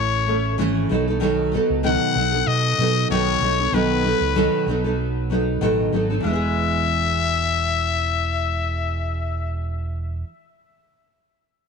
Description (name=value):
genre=acoustic pop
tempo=95 BPM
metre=4/4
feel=swing 55% on 16ths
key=E major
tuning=A4 = 441 Hz
part: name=growling trumpet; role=melody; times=0.0-9.5 s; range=B4 to F#5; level=-23 LUFS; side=left 9 dB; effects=tape echo
part: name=nylon-string guitar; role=accompaniment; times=0.0-10.3 s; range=B2 to A4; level=-22 LUFS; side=right 1 dB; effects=double-tracked left and right
part: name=fingered electric bass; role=bass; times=0.0-10.2 s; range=E1 to B2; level=-25 LUFS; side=right 2 dB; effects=none
room=light reverb, small room reverb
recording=none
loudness=-19 LUFS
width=side -5 dB against mid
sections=0.0-6.2 A section; 6.2-8.8 B section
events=none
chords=0.0 A; 0.9 B7; 6.2 E